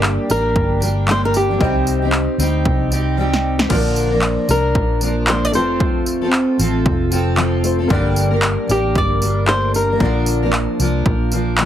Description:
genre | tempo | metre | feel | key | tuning
acoustic pop | 114 BPM | 4/4 | swing 60% on 16ths | Bb major | A4 = 438 Hz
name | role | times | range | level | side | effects
felt-muted upright piano | accompaniment | 0.0-11.7 s | A3 to Eb5 | -27 LUFS | left 6 dB | plate reverb
fingerpicked steel-string acoustic guitar | accompaniment | 0.0-11.7 s | G2 to Bb4 | -20 LUFS | equal | double-tracked left and right, plate reverb
vintage muted fingered electric bass | bass | 0.0-11.7 s | F1 to D2 | -20 LUFS | equal | none
punchy analog drum machine | drums | 0.0-11.7 s | crash cymbal, handclaps, kick drum, snare drum, tambourine | -20 LUFS | equal | overdrive
flamenco guitar | melody | 0.3-11.5 s | G4 to D5 | -20 LUFS | left 1 dB | plate reverb
room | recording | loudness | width
light reverb | heavily compressed radio sound, multiband compression | -14 LUFS | side -10 dB against mid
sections
0.0-11.7 A section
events
drum fill 3.2-3.7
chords
0.0 Gm; 1.6 Cm; 3.7 Bb; 5.5 F; 7.9 Gm; 10.0 Bb

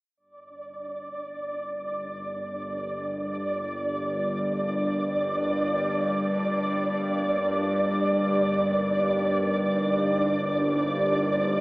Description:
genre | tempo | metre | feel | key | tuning
dark ambient drone | free time | none | none | G minor | A4 = 440 Hz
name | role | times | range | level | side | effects
deep dark ambient pad | sustained chords | 2.4-11.6 s | D4 to C5 | -37 LUFS | equal | none
bowed-like drone | drone | 1.6-11.6 s | G1 to G2 | -28 LUFS | equal | built-in reverb
flickering grainy texture | texture | 0.6-11.6 s | D5 | -27 LUFS | right 1 dB | built-in reverb
room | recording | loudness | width
wet cathedral reverb, RT60 5.8 s | worn, warbling old tape, cassette tape, warbly pitch drift, AM radio sound | -24 LUFS | side -22 dB against mid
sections
0.2-11.6 A section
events
none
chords
0.2 Gm; 7.7 Eb

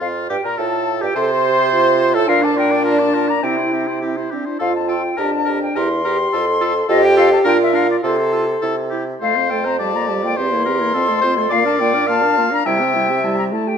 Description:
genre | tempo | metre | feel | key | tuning
quick classical-period movement for wind quintet | 104 BPM | 2/4 | straight | F major | A4 = 440 Hz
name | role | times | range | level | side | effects
mellow silver concert flute | melody | 0.0-13.8 s | C5 to C6 | -20 LUFS | left 5 dB | none
clear oboe | second line | 0.0-13.5 s | F4 to F5 | -23 LUFS | left 3 dB | none
clear clarinet | accompaniment | 0.0-13.8 s | C4 to C5 | -24 LUFS | right 8 dB | none
clear bassoon | bass | 0.0-13.5 s | E2 to C3 | -22 LUFS | right 2 dB | none
warm French horn | accompaniment | 0.6-13.8 s | G3 to A4 | -20 LUFS | right 1 dB | none
room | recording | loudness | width
wet recital hall reverb, RT60 1.7 s | none | -14 LUFS | side -7 dB against mid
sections
0.0-9.2 A section; 9.2-13.8 A section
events
none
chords
0.0 Fsus24; 0.6 Fadd9; 1.2 C5; 1.7 F/C; 2.3 Bb; 3.4 C; 4.6 F; 5.2 Gm7/F; 5.8 C7/E; 6.3 F; 7.5 Bb; 8.0 F/C; 8.6 C; 9.2 F; 9.8 Gm7/F; 10.4 C7/E; 10.9 F; 11.5 Bb; 12.7 C

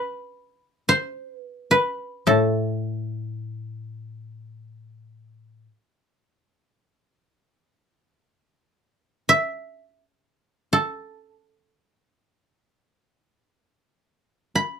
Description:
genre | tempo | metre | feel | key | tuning
japanese traditional, Japanese chamber music | free time | none | none | A hirajoshi | A4 = 440 Hz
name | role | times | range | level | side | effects
koto | melody | 0.0-14.8 s | A4 to B5 | -20 LUFS | right 1 dB | none
koto | accompaniment | 2.3-5.6 s | A2 | -24 LUFS | left 3 dB | none
room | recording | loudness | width
light reverb | close, detailed microphones | -21 LUFS | side -6 dB against mid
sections
0.0-13.3 A section; 13.3-14.8 A section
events
none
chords
none

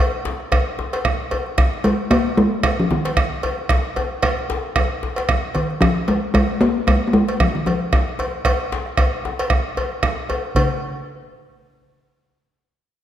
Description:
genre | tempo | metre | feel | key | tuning
west african traditional, West African drum ensemble | 114 BPM | 4/4 | swing 56% on 16ths | unclear | A4 = 441 Hz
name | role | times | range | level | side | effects
djembe | percussion | 0.1-10.8 s | none | -26 LUFS | left 3 dB | none
bombo | percussion | 0.3-10.8 s | none | -21 LUFS | right 2 dB | none
cowbell | percussion | 0.5-10.8 s | none | -26 LUFS | equal | none
talking drum | melody | 1.8-10.8 s | Db3 to Bb3 | -18 LUFS | left 1 dB | none
room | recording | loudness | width
moderate scoring stage reverb, RT60 1.8 s | none | -17 LUFS | side -11 dB against mid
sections
0.0-10.6 A section; 10.6-12.7 B section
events
none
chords
none

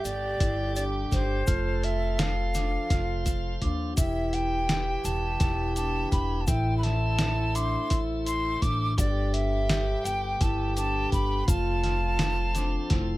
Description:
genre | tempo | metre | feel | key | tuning
progressive instrumental, band music in an uneven meter | 168 BPM (eighths) | 7/8 | straight | unclear | A4 = 440 Hz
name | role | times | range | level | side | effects
breathy mellow jazz flute | melody | 0.0-13.2 s | C5 to D6 | -31 LUFS | equal | none
growling trombone | second line | 0.0-13.2 s | C4 to A4 | -36 LUFS | right 4 dB | none
tonewheel organ | accompaniment | 0.0-13.2 s | E3 to E5 | -37 LUFS | equal | slow rotary speaker
vibraphone with medium hard mallets | arpeggios | 0.0-13.2 s | D4 to G4 | -34 LUFS | left 1 dB | none
upright bass | bass | 0.0-13.2 s | E1 to D#2 | -29 LUFS | equal | none
lo-fi sampler-style drum kit | drums | 0.1-13.1 s | hi-hat, kick drum, snare drum | -27 LUFS | equal | overdrive
egg shaker | percussion | 0.1-12.9 s | none | -41 LUFS | left 5 dB | none
room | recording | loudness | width
light reverb | none | -24 LUFS | side -18 dB against mid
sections
0.0-13.2 A section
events
drum fill 12.9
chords
0.0 Gsus2; 1.5 F; 4.0 Em; 6.5 Am; 9.0 Gadd9; 11.5 F

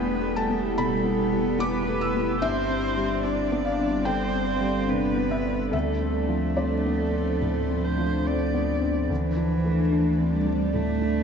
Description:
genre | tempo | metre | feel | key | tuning
neoclassical piano and strings | 73 BPM | 4/4 | rubato | D dorian | A4 = 440 Hz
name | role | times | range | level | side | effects
warm cello | second line | 0.0-11.2 s | E3 to D4 | -29 LUFS | right 3 dB | tape echo
felt-muted upright piano | accompaniment | 0.0-11.2 s | D2 to E6 | -27 LUFS | left 3 dB | none
warm viola | accompaniment | 0.0-9.1 s | A4 to D5 | -32 LUFS | right 2 dB | none
ethereal airy pad | sustained chords | 0.0-11.2 s | F3 to D5 | -29 LUFS | equal | ensemble chorus, built-in reverb
punchy sub bass | bass | 0.0-11.2 s | E1 to D2 | -31 LUFS | equal | none
room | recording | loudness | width
wet church reverb, RT60 2.8 s | dreamy mix soaked in reverb, nothing above 7.9 kHz | -22 LUFS | side -6 dB against mid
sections
0.0-9.1 A section; 9.1-11.2 A section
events
none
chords
0.0 Em; 2.4 Gsus4; 5.7 Dm7; 9.1 Dsus2

